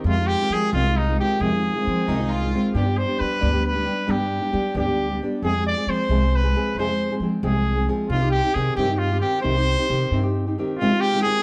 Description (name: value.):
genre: mexican folk, mariachi.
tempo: 89 BPM (dotted quarters).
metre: 6/8.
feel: straight.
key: unclear.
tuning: A4 = 440 Hz.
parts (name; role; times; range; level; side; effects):
nylon-string guitar; accompaniment; 0.0-11.4 s; F2 to Ab4; -26 LUFS; equal; none.
upright bass; bass; 0.0-10.6 s; C2 to G3; -26 LUFS; equal; none.
bright trumpet; melody; 0.1-11.4 s; Eb4 to D5; -26 LUFS; equal; none.
rich chamber violin section; second line; 1.8-2.6 s; C4 to F4; -34 LUFS; equal; none.
room: moderate recital hall reverb, RT60 1.4 s.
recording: dark, warm production.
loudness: -22 LUFS.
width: mono.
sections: 0.0-10.8 A section.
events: none.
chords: 0.0 Fm7; 2.7 G; 5.4 Fm; 8.1 Cm; 10.8 Fm7.